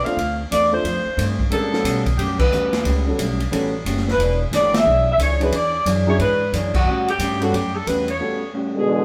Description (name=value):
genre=jazz, big band swing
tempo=179 BPM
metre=4/4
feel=swing 64% on 8ths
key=A mixolydian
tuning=A4 = 439 Hz
part: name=mellow saxophone section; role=melody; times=0.0-9.0 s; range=F#4 to F5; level=-23 LUFS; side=equal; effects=none
part: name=vintage hollow-body jazz guitar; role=accompaniment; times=0.0-9.0 s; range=A2 to C#5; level=-29 LUFS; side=equal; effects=none
part: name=upright bass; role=bass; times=0.0-8.2 s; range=E1 to B2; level=-26 LUFS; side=equal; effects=none
part: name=warm concert grand piano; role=accompaniment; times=0.1-8.4 s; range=F#3 to C5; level=-26 LUFS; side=equal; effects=none
part: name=swinging big-band drum kit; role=drums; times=0.1-8.1 s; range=crash cymbal, hi-hat, kick drum, ride cymbal, snare drum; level=-28 LUFS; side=equal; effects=none
part: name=clear trombone section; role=second line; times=8.7-9.0 s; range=B2 to G#3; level=-21 LUFS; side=equal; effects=none
room=moderate studio reverb, RT60 0.6 s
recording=band playing live in one room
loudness=-20 LUFS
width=mono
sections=0.0-9.0 A section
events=band accent 2.3, 4.7, 6.7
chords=0.2 Dm7; 1.5 A13; 4.2 E13; 6.9 A13